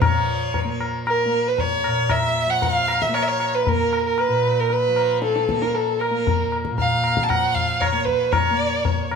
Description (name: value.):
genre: indian classical, Hindustani.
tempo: 116 BPM.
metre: 4/4.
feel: straight.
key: Bb raga todi.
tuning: A4 = 443 Hz.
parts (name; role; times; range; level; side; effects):
rich violin; melody; 0.0-9.1 s; A4 to A5; -20 LUFS; right 2 dB; tape echo.
tanpura; drone; 0.0-9.2 s; Bb2 to Bb3; -27 LUFS; right 1 dB; none.
tabla; percussion; 0.0-9.2 s; none; -23 LUFS; left 4 dB; none.
room: wet small room reverb, RT60 0.5 s.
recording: none.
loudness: -18 LUFS.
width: side -6 dB against mid.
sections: 0.0-9.2 A section.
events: none.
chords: none.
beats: | 0.02 0.54 1.06 1.59 | 2.11 2.63 3.15 3.67 | 4.19 4.71 5.23 5.75 | 6.26 6.78 7.30 7.82 | 8.33 8.85.